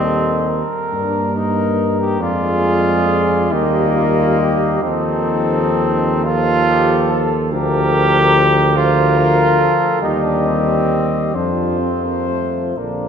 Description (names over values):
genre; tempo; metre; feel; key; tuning
classical, hymn-like piece for brass band; 39-48 BPM (dotted quarters); 6/8; rubato; unclear; A4 = 440 Hz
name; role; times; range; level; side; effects
mellow cornet; melody; 0.0-13.1 s; A4 to Eb5; -22 LUFS; left 8 dB; none
mellow flugelhorn; second line; 0.0-13.1 s; D4 to C5; -23 LUFS; right 4 dB; none
clear trombone; accompaniment; 0.0-13.1 s; A3 to G4; -19 LUFS; right 2 dB; none
warm euphonium; accompaniment; 0.0-13.1 s; D3 to Bb3; -23 LUFS; left 3 dB; none
mellow tuba; bass; 0.0-13.1 s; Bb1 to G2; -19 LUFS; equal; none
room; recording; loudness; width
wet cathedral reverb, RT60 4.2 s; minimal, uncompressed stereo recording; -14 LUFS; side -7 dB against mid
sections
0.0-13.1 A section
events
none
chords
0.0 Eb; 2.2 Ddim/F; 3.5 Eb; 4.8 F7/Eb; 7.5 Bb/D; 10.0 Eb; 11.3 F5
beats
0.93 | 2.21 3.52 | 4.83 6.24 | 7.51 8.76 | 10.01 11.34 | 12.77